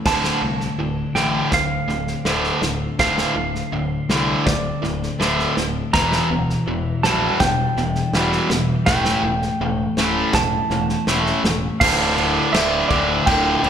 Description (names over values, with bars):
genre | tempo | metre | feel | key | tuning
post-rock | 82 BPM | 4/4 | straight | D minor | A4 = 440 Hz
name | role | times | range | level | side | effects
twelve-string electric guitar | arpeggios | 0.0-13.7 s | D2 to F4 | -26 LUFS | left 2 dB | none
distorted electric guitar | riff | 0.0-13.7 s | D2 to A3 | -21 LUFS | equal | overdrive
clean lap steel guitar | melody | 0.1-13.7 s | D5 to Bb5 | -23 LUFS | right 3 dB | none
growling fingered electric bass | bass | 0.1-13.7 s | D1 to C2 | -27 LUFS | equal | overdrive
loose indie drum kit | drums | 0.1-13.7 s | crash cymbal, kick drum, snare drum | -24 LUFS | equal | none
room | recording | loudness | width
wet recital hall reverb, RT60 1.5 s | recorded in a church or concert hall | -17 LUFS | side -8 dB against mid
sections
0.0-11.8 A section; 11.8-13.7 B section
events
build-up 0.0-11.8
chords
0.1 Dm7; 5.9 Em7b5; 8.9 A7; 11.8 Dm